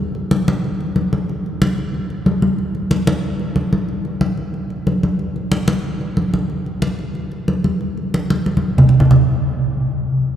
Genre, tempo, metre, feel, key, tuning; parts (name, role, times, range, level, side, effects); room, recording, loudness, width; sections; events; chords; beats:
jazz; 184 BPM; 4/4; straight
congas; percussion; 0.1-9.2 s; -16 LUFS; equal
wet cathedral reverb, RT60 4.6 s; recorded in a church or concert hall; -16 LUFS; side -10 dB against mid
0.0-3.9 A section; 3.9-9.1 B section; 9.1-10.4 C section
drum fill 8.5-9.1
0.30 0.63 0.95 | 1.28 1.61 1.93 2.26 | 2.58 2.91 3.23 3.56 | 3.89 4.21 4.54 4.86 | 5.19 5.52 5.84 6.17 | 6.50 6.82 7.15 7.48 | 7.80 8.13 8.46 8.79 | 9.11